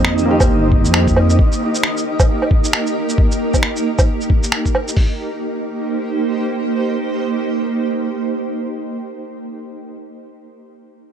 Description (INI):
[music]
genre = future garage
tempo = 134 BPM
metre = 4/4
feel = swing 60% on 16ths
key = C minor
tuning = A4 = 439 Hz
[part]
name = felt-muted upright piano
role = accompaniment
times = 0.0-1.4 s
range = Eb3 to Bb4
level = -21 LUFS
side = right 1 dB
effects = sidechain pumping, tape echo
[part]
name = granular cloud pad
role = sustained chords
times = 0.0-9.3 s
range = Bb3 to C5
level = -21 LUFS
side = right 2 dB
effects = built-in reverb, vintage 12-bit sampler grit, sidechain pumping
[part]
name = dark detuned saw bass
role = bass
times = 0.0-1.4 s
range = G1 to F2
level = -17 LUFS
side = equal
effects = sidechain pumping
[part]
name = electronic finger snaps, shaker and woodblock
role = drums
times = 0.0-5.0 s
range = none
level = -18 LUFS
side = right 1 dB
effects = none
[part]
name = flickering grainy texture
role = texture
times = 0.0-5.0 s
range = Eb4 to Eb5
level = -25 LUFS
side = equal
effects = built-in reverb
[part]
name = lo-fi sampler-style drum kit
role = drums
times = 0.4-5.1 s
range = hi-hat, kick drum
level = -15 LUFS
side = equal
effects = none
[sound]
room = little or no reverb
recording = dry, gritty hardware recording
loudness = -15 LUFS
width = side -8 dB against mid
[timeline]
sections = 0.0-5.0 A section; 5.0-8.6 B section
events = none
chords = 0.0 Cm7